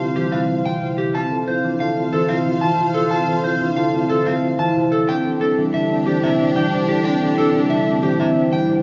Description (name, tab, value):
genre	classical, minimalist pattern music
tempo	183 BPM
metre	6/4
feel	straight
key	unclear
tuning	A4 = 436 Hz
part	electric guitar at the edge of break-up	melody	0.0-8.7 s	G4 to A5	-24 LUFS	equal	none
part	alto flute	second line	0.0-8.8 s	D4 to F4	-28 LUFS	equal	none
part	concert harp	accompaniment	0.0-8.8 s	C3 to C4	-23 LUFS	equal	none
part	clear symphonic string section	sustained chords	0.0-8.8 s	D4 to F5	-32 LUFS	equal	none
part	vibraphone with soft mallets	arpeggios	0.0-8.8 s	C4 to C5	-26 LUFS	equal	none
room	moderate recital hall reverb, RT60 1.6 s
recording	nothing above 7.6 kHz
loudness	-19 LUFS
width	mono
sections	0.0-8.8 A section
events	none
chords	0.0 G7sus4; 1.1 Dm7; 5.1 A7sus4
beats	0.17 0.49 0.82 | 1.15 1.48 1.81 2.13 2.46 2.79 | 3.12 3.44 3.77 4.10 4.43 4.76 | 5.08 5.41 5.74 6.07 6.40 6.72 | 7.05 7.38 7.71 8.04 8.36 8.69